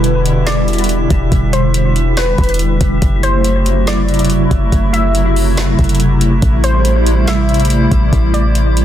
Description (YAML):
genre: hip hop, atmospheric cloud-rap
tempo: 141 BPM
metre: 4/4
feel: half-time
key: E minor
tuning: A4 = 444 Hz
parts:
  - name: warbly dusty pluck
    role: melody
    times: 0.0-8.8 s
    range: B4 to E5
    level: -20 LUFS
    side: left 2 dB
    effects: chorus, low-pass filter, ping-pong delay
  - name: hollow soft pad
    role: sustained chords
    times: 0.0-8.8 s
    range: B2 to E4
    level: -16 LUFS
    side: equal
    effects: ensemble chorus, tremolo, sidechain pumping
  - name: warm 808-style bass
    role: bass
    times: 0.0-8.8 s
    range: E1 to A1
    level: -14 LUFS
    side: equal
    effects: none
  - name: smooth R&B drum kit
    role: drums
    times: 0.0-8.8 s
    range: hi-hat, kick drum, snare drum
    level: -17 LUFS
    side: equal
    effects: none
  - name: drifting glass-harmonics texture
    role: texture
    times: 0.0-8.8 s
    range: A3 to E5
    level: -26 LUFS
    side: equal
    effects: chorus, built-in reverb
room: little or no reverb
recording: dense, heavily limited modern master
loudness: -11 LUFS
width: side -11 dB against mid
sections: 0.0-8.8 A section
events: none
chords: 0.0 Em7; 3.0 F#m7b5; 6.4 Am7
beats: 0.04 0.47 0.89 | 1.32 1.74 2.17 2.60 | 3.02 3.45 3.87 4.30 | 4.72 5.15 5.57 6.00 | 6.42 6.85 7.28 7.70 | 8.13 8.55